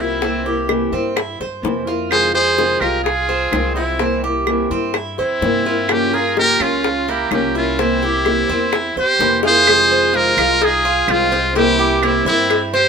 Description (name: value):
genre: latin, Cuban son and guajira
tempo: 127 BPM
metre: 4/4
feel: straight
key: F harmonic minor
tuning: A4 = 440 Hz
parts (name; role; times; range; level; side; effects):
- trumpet with metal mute; melody; 0.0-12.9 s; E4 to C5; -16 LUFS; equal; none
- rich violin; second line; 0.0-12.9 s; C4 to Ab4; -24 LUFS; right 4 dB; none
- fingerpicked steel-string acoustic guitar; accompaniment; 0.0-12.5 s; C3 to G4; -21 LUFS; left 2 dB; none
- Cuban tres; arpeggios; 0.0-12.9 s; Bb3 to C5; -22 LUFS; right 5 dB; none
- upright bass; bass; 0.0-12.9 s; C2 to G2; -28 LUFS; equal; none
- bongos and cowbell; percussion; 0.2-12.7 s; none; -22 LUFS; left 4 dB; none
- claves; percussion; 0.7-12.7 s; none; -23 LUFS; right 7 dB; none
room: light reverb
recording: minimal, uncompressed stereo recording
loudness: -14 LUFS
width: side -6 dB against mid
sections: 0.0-9.7 A section; 9.7-12.9 B section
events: drum fill 9.4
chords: 0.2 C7; 2.1 Fm7; 4.0 C7; 5.9 Gm7b5; 7.8 C7; 9.7 Fm7; 11.6 C7